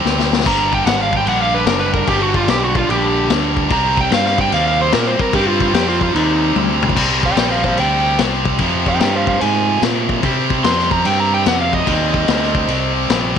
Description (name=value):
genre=blues rock power trio and southern rock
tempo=147 BPM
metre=4/4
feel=swing 66% on 8ths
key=C minor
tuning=A4 = 440 Hz
part: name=tight distorted guitar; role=riff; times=0.0-13.4 s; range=F2 to C4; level=-18 LUFS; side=right 1 dB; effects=distortion
part: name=growling fingered electric bass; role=bass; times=0.0-13.4 s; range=F#1 to C3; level=-21 LUFS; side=right 2 dB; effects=overdrive
part: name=vintage drum kit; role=drums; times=0.1-13.4 s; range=crash cymbal, kick drum, snare drum, splash cymbal, toms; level=-19 LUFS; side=left 5 dB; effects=none
part: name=overdriven slide guitar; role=melody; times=0.5-12.9 s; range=Eb4 to C6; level=-18 LUFS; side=right 1 dB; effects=slapback echo
room=light reverb, small room ambience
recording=1960s-style stereo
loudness=-13 LUFS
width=side -8 dB against mid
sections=0.0-7.0 A section; 7.0-13.4 A section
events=electric slide guitar solo 0.0-13.4; drum fill 0.1-0.5, 6.6-7.0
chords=0.5 G; 3.7 Cmadd9; 7.0 Csus2; 8.6 Fmadd9; 10.2 Cmadd9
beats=0.05 | 0.46 0.86 1.27 1.68 | 2.08 2.49 2.90 3.30 | 3.71 4.12 4.52 4.93 | 5.34 5.74 6.15 6.56 | 6.96 7.37 7.78 8.19 | 8.60 9.01 9.41 9.82 | 10.23 10.64 11.05 11.46 | 11.87 12.28 12.69 13.10